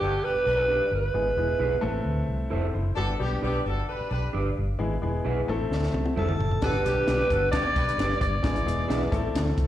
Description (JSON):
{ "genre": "uptempo 1960s-style soul", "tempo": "132 BPM", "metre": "4/4", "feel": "straight", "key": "G major", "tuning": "A4 = 440 Hz", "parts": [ { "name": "growling alto saxophone", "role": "melody", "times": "0.0-2.3, 6.2-9.5 s", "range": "G4 to D5", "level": "-26 LUFS", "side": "right 1 dB", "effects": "plate reverb" }, { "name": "warm horn section", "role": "second line", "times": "0.0-7.9 s", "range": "B3 to B4", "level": "-33 LUFS", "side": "left 1 dB", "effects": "plate reverb, slapback echo" }, { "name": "warm baby grand piano", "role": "accompaniment", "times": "0.0-9.7 s", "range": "G3 to C5", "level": "-31 LUFS", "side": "left 4 dB", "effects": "plate reverb, slapback echo" }, { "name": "vintage muted fingered electric bass", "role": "bass", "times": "0.0-9.7 s", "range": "E1 to D2", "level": "-28 LUFS", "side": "equal", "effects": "none" }, { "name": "electric guitar through a small old amp", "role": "stabs", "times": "0.7-9.0 s", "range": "D4 to E5", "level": "-33 LUFS", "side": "right 4 dB", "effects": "slapback echo, plate reverb" }, { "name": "compact cocktail drum kit", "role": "drums", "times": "5.7-9.7 s", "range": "hi-hat, kick drum, snare drum, toms", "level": "-29 LUFS", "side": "equal", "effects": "slapback echo" }, { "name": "mellow tonewheel organ", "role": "sustained chords", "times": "6.6-9.7 s", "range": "D3 to E4", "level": "-36 LUFS", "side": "equal", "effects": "fast rotary speaker, chorus vibrato, plate reverb" } ], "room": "light reverb", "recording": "live gig heard through the venue's PA, recital hall reverb", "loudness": "-23 LUFS", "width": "side -12 dB against mid", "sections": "0.0-9.7 A section", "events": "drum fill 5.7-6.6", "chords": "0.0 G; 1.1 E; 1.8 Am; 3.0 G; 4.8 E; 5.5 Am; 6.6 G; 8.4 E; 9.1 Am" }